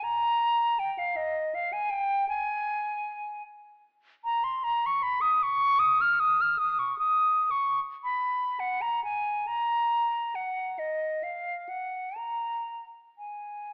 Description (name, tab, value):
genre	classical, free, expressive piece for unaccompanied flute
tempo	58-82 BPM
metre	3/4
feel	rubato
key	G# dorian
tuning	A4 = 441 Hz
part	concert flute	solo	0.0-13.7 s	D#5 to E#6	-25 LUFS	equal	none
room	moderate recital hall reverb, RT60 1.6 s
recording	AM radio sound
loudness	-25 LUFS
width	side -38 dB against mid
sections	0.0-13.7 A section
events	none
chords	none